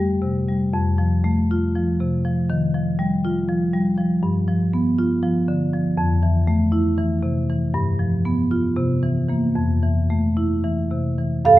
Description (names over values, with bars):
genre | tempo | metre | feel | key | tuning
classical, contemporary piece for solo marimba | 237 BPM (eighths) | 7/8 | rubato | F lydian | A4 = 438 Hz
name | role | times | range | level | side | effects
marimba with medium hard mallets | solo | 0.0-11.6 s | F2 to F5 | -18 LUFS | equal | none
room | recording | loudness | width
moderate recital hall reverb, RT60 1.3 s | none | -18 LUFS | side -15 dB against mid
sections
0.0-11.4 A section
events
none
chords
0.0 Fsus2; 0.7 F; 2.5 Ebadd9; 4.2 G7; 6.0 Fmaj7; 7.7 G7; 8.8 C7; 9.6 Fmaj7